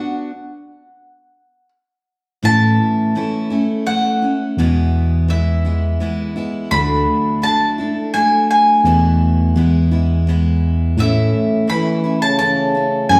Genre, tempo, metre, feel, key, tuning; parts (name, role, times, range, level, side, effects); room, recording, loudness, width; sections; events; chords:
acoustic folk duo or small band; 84 BPM; 3/4; straight; A major; A4 = 440 Hz
mandolin; melody; 0.0-13.2 s; E5 to B5; -20 LUFS; equal
picked steel-string acoustic guitar; accompaniment; 0.0-13.2 s; E2 to F#4; -22 LUFS; equal
tine electric piano; bass; 2.4-13.2 s; D2 to A2; -18 LUFS; equal
warm French horn; second line; 11.0-13.2 s; A2 to E3; -23 LUFS; equal
wet large studio reverb, RT60 1.3 s; band playing live in one room; -16 LUFS; mono
0.0-2.4 A section; 2.4-13.2 A section
stop 0.3-2.4
0.3 N.C.; 2.4 A; 4.6 E; 6.7 Dadd9; 8.8 Esus4; 9.6 E; 11.0 A